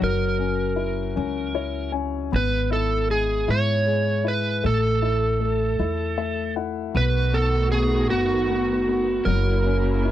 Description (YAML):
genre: pop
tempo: 52 BPM (dotted quarters)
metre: 6/8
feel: straight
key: unclear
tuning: A4 = 442 Hz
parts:
  - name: overdriven slide guitar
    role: melody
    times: 0.0-10.1 s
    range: F#4 to C#5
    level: -24 LUFS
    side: right 3 dB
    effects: none
  - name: clear grand piano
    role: accompaniment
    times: 0.0-10.1 s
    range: F#3 to G#5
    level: -27 LUFS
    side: left 11 dB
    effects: none
  - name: upright bass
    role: bass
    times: 0.0-10.1 s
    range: F#1 to G#2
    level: -24 LUFS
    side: right 1 dB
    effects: none
  - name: muted studio string section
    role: sustained chords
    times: 6.9-10.1 s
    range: C#3 to F#4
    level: -27 LUFS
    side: right 1 dB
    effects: none
room: light reverb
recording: dry, close 1970s-style studio recording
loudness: -20 LUFS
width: side -12 dB against mid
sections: 0.0-10.1 A section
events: grand piano fill 1.2-2.3, 5.8-7.0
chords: 0.0 F#7; 2.3 C#m7/G#; 4.6 A5; 7.0 B7; 9.3 F#7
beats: | 0.01 1.17 | 2.33 3.48 | 4.64 5.80 | 6.95 8.11 | 9.27